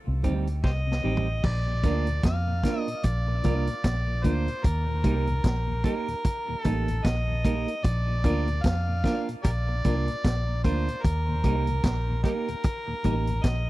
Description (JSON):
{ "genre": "roots reggae", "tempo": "75 BPM", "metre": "4/4", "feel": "swing 59% on 16ths", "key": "unclear", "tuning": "A4 = 440 Hz", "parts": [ { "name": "mellow tonewheel organ", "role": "accompaniment", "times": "0.1-13.4 s", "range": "Eb2 to Eb4", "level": "-34 LUFS", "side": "left 3 dB", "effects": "chorus vibrato, slow rotary speaker, tube saturation" }, { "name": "vintage muted fingered electric bass", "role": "bass", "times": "0.1-13.7 s", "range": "A1 to F2", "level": "-26 LUFS", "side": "equal", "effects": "none" }, { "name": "semi-hollow electric guitar", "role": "accompaniment", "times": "0.2-13.3 s", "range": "G3 to Bb4", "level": "-33 LUFS", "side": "right 5 dB", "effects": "spring reverb, dub echo" }, { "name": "vintage drum kit", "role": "drums", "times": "0.2-13.7 s", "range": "crash cymbal, hi-hat, kick drum, snare drum, toms", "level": "-26 LUFS", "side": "equal", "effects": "none" }, { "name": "overdriven harmonica", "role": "melody", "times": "0.6-13.7 s", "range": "Eb4 to F5", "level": "-32 LUFS", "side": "equal", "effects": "dub echo" } ], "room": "little or no reverb", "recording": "dry, close 1970s-style studio recording", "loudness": "-24 LUFS", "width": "side -17 dB against mid", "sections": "0.0-1.4 A section; 1.4-13.7 B section", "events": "drum fill 0.6-1.4", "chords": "0.0 Cm; 1.4 Bb; 4.6 Eb; 7.8 Bb; 11.0 Eb", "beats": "0.63 | 1.44 2.24 3.04 3.84 | 4.64 5.44 6.24 7.04 | 7.84 8.64 9.44 10.24 | 11.04 11.84 12.64 13.44" }